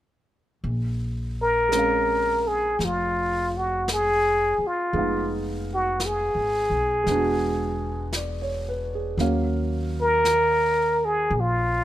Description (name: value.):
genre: jazz ballad.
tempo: 56 BPM.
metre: 4/4.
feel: swing 67% on 8ths.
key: Bb minor.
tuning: A4 = 441 Hz.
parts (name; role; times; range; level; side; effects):
upright bass; bass; 0.6-11.8 s; E1 to Eb2; -29 LUFS; equal; none.
jazz brush drum kit; drums; 0.6-11.8 s; brushed snare drum, hi-hat, snare drum; -35 LUFS; left 1 dB; none.
trumpet with plunger mute; melody; 1.4-11.8 s; F4 to Bb4; -22 LUFS; equal; none.
warm grand piano; accompaniment; 1.7-11.8 s; Gb3 to F5; -30 LUFS; right 3 dB; none.
room: light reverb.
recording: minimal, uncompressed stereo recording.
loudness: -21 LUFS.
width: side -13 dB against mid.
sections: 0.6-11.8 A section.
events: none.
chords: 0.6 Bbm9; 4.9 Fm7b5; 7.1 E9; 9.2 Ebm9.